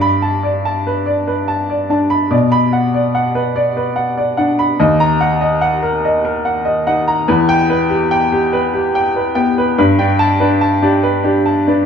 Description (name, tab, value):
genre	neoclassical minimalist piano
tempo	72 BPM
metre	3/4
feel	rubato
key	unclear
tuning	A4 = 439 Hz
part	clear upright piano	solo	0.0-11.9 s	D#2 to B5	-12 LUFS	equal	none
room	moderate large studio reverb, RT60 1.2 s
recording	band playing live in one room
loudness	-12 LUFS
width	side -7 dB against mid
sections	0.0-11.9 A section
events	none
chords	0.0 Gadd9; 2.3 Bm; 4.8 D#m; 7.3 Em; 9.8 Gadd9